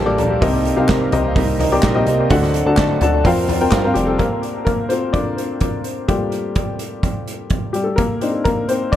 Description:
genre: piano-driven pop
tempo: 127 BPM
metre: 4/4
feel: straight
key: G minor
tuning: A4 = 440 Hz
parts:
  - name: clear upright piano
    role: accompaniment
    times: 0.0-9.0 s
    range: G2 to Bb5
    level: -18 LUFS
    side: left 3 dB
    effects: dub echo
  - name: tonewheel organ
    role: sustained chords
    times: 0.0-4.2 s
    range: C3 to A4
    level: -27 LUFS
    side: right 2 dB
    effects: none
  - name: direct-recorded clean electric guitar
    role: riff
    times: 0.0-4.2 s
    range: G2 to Bb4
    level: -25 LUFS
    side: right 5 dB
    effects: dub echo
  - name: plucky analog bass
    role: bass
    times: 0.0-4.2 s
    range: F1 to G2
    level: -21 LUFS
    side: right 1 dB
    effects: none
  - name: loose indie drum kit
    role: drums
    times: 0.2-9.0 s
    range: handclaps, hi-hat, kick drum, snare drum, toms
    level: -20 LUFS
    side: right 1 dB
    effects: dub echo
  - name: group handclap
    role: percussion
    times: 0.9-3.8 s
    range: none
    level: barely audible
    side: none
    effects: none
room: moderate spring reverb, RT60 1.7 s, small room ambience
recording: echo-heavy mix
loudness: -15 LUFS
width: side -12 dB against mid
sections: 0.0-4.2 A section; 4.2-9.0 B section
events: upright piano fill 0.0-0.4, 2.8-4.2; upright piano solo 4.2-9.0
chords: 0.4 Cm7; 2.3 D; 3.3 Fsus4; 4.2 Gm7; 8.0 Cmadd9

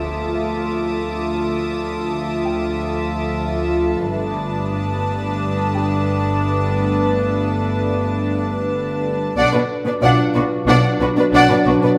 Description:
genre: cinematic, suspense film score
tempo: 91 BPM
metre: 4/4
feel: straight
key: unclear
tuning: A4 = 439 Hz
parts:
  - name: warm symphonic violin section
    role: melody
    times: 0.0-11.9 s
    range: B4 to A5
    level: -28 LUFS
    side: equal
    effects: none
  - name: warm symphonic violin section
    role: second line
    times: 0.0-11.9 s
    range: F#4 to E5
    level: -28 LUFS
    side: equal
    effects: none
  - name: warm studio viola section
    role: accompaniment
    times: 0.0-11.9 s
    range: D4 to F4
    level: -28 LUFS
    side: equal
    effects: none
  - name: dark French horn section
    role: sustained chords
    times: 0.0-12.0 s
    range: F3 to F4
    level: -26 LUFS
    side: equal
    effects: none
  - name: warbly tape-like pad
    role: sustained chords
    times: 0.0-12.0 s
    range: D4 to E5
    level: -30 LUFS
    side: equal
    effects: chorus, built-in reverb
  - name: warm symphonic cello section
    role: bass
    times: 0.0-11.9 s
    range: D2 to B2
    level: -27 LUFS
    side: equal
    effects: none
  - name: warm symphonic double bass section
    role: bass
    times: 0.0-11.7 s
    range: G1 to D2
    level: -28 LUFS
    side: equal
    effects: none
  - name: impact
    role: sound effects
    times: 0.0-1.4 s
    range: none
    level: barely audible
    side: none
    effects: none
  - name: felt-muted upright piano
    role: texture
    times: 0.0-12.0 s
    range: F4 to G5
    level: -34 LUFS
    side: equal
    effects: none
  - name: warm symphonic violin section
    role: texture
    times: 0.0-9.0 s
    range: D6 to Eb6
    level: -36 LUFS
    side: equal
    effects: none
room: moderate scoring stage reverb, RT60 1.6 s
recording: none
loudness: -19 LUFS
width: mono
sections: 0.0-12.0 A section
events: impact 0.0-1.4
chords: 0.0 Dmadd9; 4.1 Gadd9; 9.4 Bm

